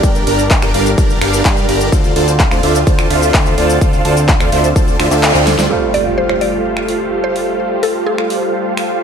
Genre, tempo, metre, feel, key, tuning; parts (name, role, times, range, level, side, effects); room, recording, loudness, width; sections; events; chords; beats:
EDM, festival progressive house; 127 BPM; 4/4; straight; F major; A4 = 440 Hz
lush unison pad; sustained chords; 0.0-9.0 s; D3 to Bb4; -21 LUFS; right 1 dB; chorus, sidechain pumping
supersaw chords; riff; 0.0-9.0 s; D4 to Bb5; -16 LUFS; right 1 dB; phaser, sidechain pumping, low-pass filter, ping-pong delay
fat analog bass; bass; 0.0-5.7 s; G1 to G2; -17 LUFS; equal; sidechain pumping
big-room dance drum kit; drums; 0.0-8.9 s; cabasa, finger snaps, handclaps, hi-hat, ride cymbal, snare drum; -19 LUFS; left 1 dB
electronic kick drum; drums; 0.0-4.9 s; -14 LUFS; equal
clear baby grand piano; accompaniment; 5.7-9.0 s; G3 to F4; -25 LUFS; right 3 dB; sidechain pumping
impact; sound effects; 5.7-7.6 s; -26 LUFS; equal
mallet-like synth pluck; melody; 5.9-8.7 s; A4 to D5; -19 LUFS; left 1 dB; chorus, ping-pong delay
light reverb; -11 LUFS; side -7 dB against mid
0.0-5.7 A section; 5.7-9.0 B section
drop 0.0-5.7; kick drops out 5.2-5.7; band accent 5.2; drum fill 5.5; impact 5.7-7.6
0.0 Gm; 1.9 Dm7; 5.7 Fadd9
| 0.03 0.51 0.98 1.45 | 1.92 2.40 2.87 3.34 | 3.81 4.29 4.76 5.23 | 5.70 6.18 6.65 7.12 | 7.59 8.07 8.54 9.01